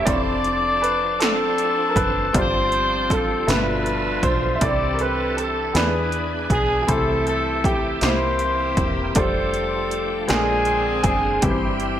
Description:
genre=slow gospel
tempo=53 BPM (dotted quarters)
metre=6/8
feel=straight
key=C major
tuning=A4 = 440 Hz
part: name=clear grand piano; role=melody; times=0.0-12.0 s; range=G4 to E5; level=-25 LUFS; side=right 3 dB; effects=none
part: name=warm horn section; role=melody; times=0.0-12.0 s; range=C4 to D5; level=-23 LUFS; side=left 3 dB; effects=ping-pong delay
part: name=clear upright piano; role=accompaniment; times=0.0-12.0 s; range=G2 to E5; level=-27 LUFS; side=left 2 dB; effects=none
part: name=bright tonewheel organ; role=sustained chords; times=0.0-12.0 s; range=B2 to E5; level=-29 LUFS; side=right 3 dB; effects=slow rotary speaker, chorus vibrato
part: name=deep dub fingered electric bass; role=bass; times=0.0-12.0 s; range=E1 to E2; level=-28 LUFS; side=equal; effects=none
part: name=80s electronic pad drums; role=drums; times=0.1-12.0 s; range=hi-hat, kick drum, snare drum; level=-24 LUFS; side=equal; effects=none
room=moderate plate reverb, RT60 1.6 s, small room ambience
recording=bright 1980s-style digital production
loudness=-18 LUFS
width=side -10 dB against mid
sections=0.0-12.0 A section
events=none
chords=0.1 Dm9/F; 2.3 G7sus4; 3.5 G13; 4.6 C69; 5.8 E7; 6.9 Am7/C; 8.0 C7; 9.2 F69; 10.3 Bb9; 11.4 C/G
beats=| 0.07 1.20 | 2.34 3.48 | 4.61 5.75 | 6.89 8.03 | 9.16 10.30 | 11.43

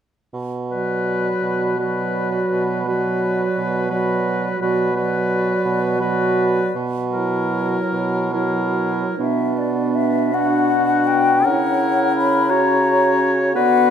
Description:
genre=classical, slow romantic movement for wind quintet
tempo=45-59 BPM (dotted quarters)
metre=6/8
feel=rubato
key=B minor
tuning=A4 = 440 Hz
part: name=warm bassoon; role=bass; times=0.3-13.9 s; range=B2 to D3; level=-24 LUFS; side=right 3 dB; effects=none
part: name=mellow hollow concert flute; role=melody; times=0.7-13.9 s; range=C#5 to B5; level=-22 LUFS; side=left 6 dB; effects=none
part: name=warm oboe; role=second line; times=0.7-13.9 s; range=F#4 to C#5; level=-24 LUFS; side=left 4 dB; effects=none
part: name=clear clarinet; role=accompaniment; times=0.7-13.9 s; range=D4 to F#4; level=-23 LUFS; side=right 4 dB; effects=none
part: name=mellow French horn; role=accompaniment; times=0.7-13.9 s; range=F#3 to D4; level=-24 LUFS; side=right 1 dB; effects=none
room=moderate scoring stage reverb, RT60 1.9 s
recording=none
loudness=-17 LUFS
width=side -8 dB against mid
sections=0.3-9.2 A section; 9.2-13.9 B section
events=none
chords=0.3 Bm; 6.7 F#7/B; 9.2 Bm; 11.4 F#7/C#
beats=| 0.34 1.43 | 2.52 3.57 | 4.60 5.64 | 6.74 7.92 | 9.18 10.32 | 11.44 12.51 | 13.56

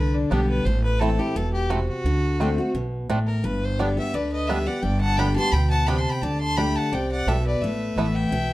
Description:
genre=bluegrass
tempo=172 BPM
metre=4/4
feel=swing 54% on 8ths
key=G major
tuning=A4 = 438 Hz
part: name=clear fiddle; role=melody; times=0.0-8.5 s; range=D4 to C6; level=-28 LUFS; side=left 2 dB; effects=none
part: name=picked steel-string acoustic guitar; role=accompaniment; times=0.0-8.5 s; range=G2 to G4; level=-25 LUFS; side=left 1 dB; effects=none
part: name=upright bass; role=bass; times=0.0-8.5 s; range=E1 to D2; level=-25 LUFS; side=right 1 dB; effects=none
part: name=bluegrass banjo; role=melody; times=0.3-8.1 s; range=G3 to E4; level=-28 LUFS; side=right 3 dB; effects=none
part: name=clear fiddle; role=second line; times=4.1-8.5 s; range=A4 to A5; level=-31 LUFS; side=equal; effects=none
room=moderate studio reverb, RT60 0.6 s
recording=dark, warm production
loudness=-21 LUFS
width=side -17 dB against mid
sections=0.0-8.5 A section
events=none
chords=0.0 G; 0.7 Am; 2.0 D7; 3.4 G; 6.2 Dsus4; 7.6 Asus2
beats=0.31 | 0.66 1.01 1.35 1.70 | 2.05 2.40 2.75 3.09 | 3.44 3.79 4.14 4.49 | 4.83 5.18 5.53 5.88 | 6.23 6.58 6.93 7.27 | 7.62 7.97 8.32

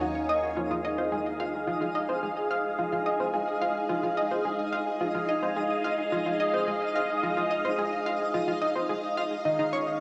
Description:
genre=ambient, sequencer-driven space music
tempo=108 BPM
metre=4/4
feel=straight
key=unclear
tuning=A4 = 440 Hz
part: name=string machine, full ensemble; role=sustained chords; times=0.0-10.0 s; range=Eb4 to Ab5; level=-32 LUFS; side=equal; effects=ensemble chorus, cassette tape
part: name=analog pluck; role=riff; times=0.0-9.8 s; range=Eb4 to F5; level=-32 LUFS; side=equal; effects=chorus, vintage 12-bit sampler grit, cassette tape, tape echo
part: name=analog drone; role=bass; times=0.0-0.5 s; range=Eb2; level=-49 LUFS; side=equal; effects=chorus
part: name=twinkling granular texture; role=texture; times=0.0-10.0 s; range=Eb4 to Eb5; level=-38 LUFS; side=equal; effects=built-in reverb, cassette tape
room=wet spring reverb, RT60 3.0 s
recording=home recording on cassette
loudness=-28 LUFS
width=mono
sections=0.6-10.0 A section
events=none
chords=0.0 Ebm7; 0.6 Fm7; 9.5 Eb7(no3)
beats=0.01 | 0.57 1.12 1.68 2.23 | 2.79 3.34 3.90 4.46 | 5.01 5.57 6.12 6.68 | 7.23 7.79 8.34 8.90 | 9.46

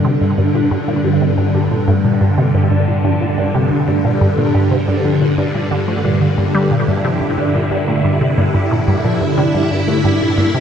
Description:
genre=ambient, sequencer-driven space music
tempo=90 BPM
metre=4/4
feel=straight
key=G dorian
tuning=A4 = 439 Hz
part: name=phased string machine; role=sustained chords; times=0.0-10.6 s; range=G2 to E4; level=-15 LUFS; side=equal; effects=ensemble chorus, phaser
part: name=mellow electric guitar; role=arpeggios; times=0.0-10.6 s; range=F3 to G4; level=-25 LUFS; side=right 1 dB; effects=auto-pan, tape echo
part: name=resonant blip pluck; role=riff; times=0.0-10.6 s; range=G2 to G3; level=-17 LUFS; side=equal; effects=phaser, tape echo
room=wet huge ambient reverb, RT60 8.2 s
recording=dark, warm production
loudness=-13 LUFS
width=side -8 dB against mid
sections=0.0-10.6 A section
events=fade-in on clean electric guitar 0.0-10.6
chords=0.0 Gm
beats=0.05 0.71 | 1.38 2.05 2.71 3.38 | 4.05 4.71 5.38 6.05 | 6.71 7.38 8.05 8.71 | 9.38 10.05

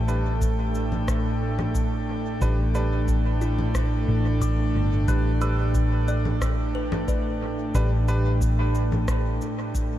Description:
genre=ambient dub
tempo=90 BPM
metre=4/4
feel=straight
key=unclear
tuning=A4 = 444 Hz
part: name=airy breathy pad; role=sustained chords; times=0.0-10.0 s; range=A2 to G5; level=-28 LUFS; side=right 1 dB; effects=chorus
part: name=hollow-body short-scale fingered electric bass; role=bass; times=0.0-9.4 s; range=G1 to A1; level=-24 LUFS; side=equal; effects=none
part: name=bubbling stepped-filter texture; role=texture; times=0.0-10.0 s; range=A3 to A4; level=-39 LUFS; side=equal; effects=chorus, built-in reverb
part: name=clear upright piano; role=stabs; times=0.1-8.3 s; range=G3 to B4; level=-35 LUFS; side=right 2 dB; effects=dub echo
part: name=electronic cabasa, congas and rim click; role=drums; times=0.1-9.9 s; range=none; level=-35 LUFS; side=left 2 dB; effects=dub echo
part: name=electronic kick drum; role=drums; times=0.4-9.9 s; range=none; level=-28 LUFS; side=equal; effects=overdrive
part: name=kalimba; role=arpeggios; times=3.4-9.9 s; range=E4 to F#6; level=-37 LUFS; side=left 2 dB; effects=analog delay
room=light reverb, digital ambience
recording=none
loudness=-21 LUFS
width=side -12 dB against mid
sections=0.0-10.0 A section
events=none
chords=0.0 A7sus2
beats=0.41 1.08 1.75 | 2.41 3.08 3.75 4.41 | 5.08 5.75 6.41 7.08 | 7.75 8.41 9.08 9.75

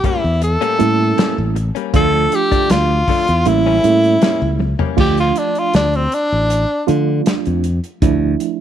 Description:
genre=straight-eighth soul blues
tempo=79 BPM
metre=4/4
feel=straight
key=unclear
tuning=A4 = 440 Hz
part: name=bright tenor saxophone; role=melody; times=0.0-6.9 s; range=C4 to A4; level=-17 LUFS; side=left 1 dB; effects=none
part: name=direct-recorded clean electric guitar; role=stabs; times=0.0-5.0 s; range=A2 to D4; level=-25 LUFS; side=left 14 dB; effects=spring reverb
part: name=warm soul drum kit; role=drums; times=0.0-8.6 s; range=crash cymbal, hi-hat, kick drum, snare drum, toms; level=-18 LUFS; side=left 1 dB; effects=none
part: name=modern bright fingered electric bass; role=bass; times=0.2-8.3 s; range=A1 to D3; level=-17 LUFS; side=left 1 dB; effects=none
part: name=reed electric piano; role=accompaniment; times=0.8-8.6 s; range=F3 to F4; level=-19 LUFS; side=right 13 dB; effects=fast tremolo
room=light reverb, studio ambience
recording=1960s-style stereo with parts hard left and right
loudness=-13 LUFS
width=side -10 dB against mid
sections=0.0-5.0 A section; 5.0-8.6 B section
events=drum fill 4.6-5.0; tenor saxophone solo 5.0-8.6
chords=0.0 A7b9; 1.9 Dm; 3.5 A7b9; 5.0 Dm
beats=0.41 1.17 | 1.93 2.69 3.46 4.22 | 4.98 5.74 6.50 7.26 | 8.02

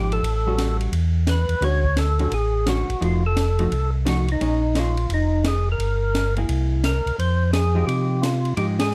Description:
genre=soul jazz organ trio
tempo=173 BPM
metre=4/4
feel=swing 64% on 8ths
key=unclear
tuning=A4 = 437 Hz
part: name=percussive tonewheel organ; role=melody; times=0.0-8.9 s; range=Eb4 to C#5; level=-28 LUFS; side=equal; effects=slow rotary speaker, overdrive, plate reverb
part: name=vintage hollow-body jazz guitar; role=accompaniment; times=0.0-8.8 s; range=D3 to Ab4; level=-30 LUFS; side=equal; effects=none
part: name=mellow tonewheel organ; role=bass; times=0.0-8.9 s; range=F1 to C3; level=-24 LUFS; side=equal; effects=chorus vibrato, slow rotary speaker
part: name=open jazz drum kit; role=drums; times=0.1-8.9 s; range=hi-hat, kick drum, ride cymbal, snare drum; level=-32 LUFS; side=equal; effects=none
room=light reverb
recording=dark, warm production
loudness=-22 LUFS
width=mono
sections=0.0-8.9 A section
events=band accent 8.7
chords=0.2 A13; 1.6 Dmaj7#11; 3.0 F7b9; 4.4 Bbm7; 5.8 Gm6; 6.5 Caug7; 7.2 Fm9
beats=| 0.23 0.58 0.93 1.27 | 1.62 1.97 2.32 2.66 | 3.01 3.36 3.71 4.05 | 4.40 4.75 5.10 5.44 | 5.79 6.14 6.49 6.83 | 7.18 7.53 7.88 8.22 | 8.57 8.92

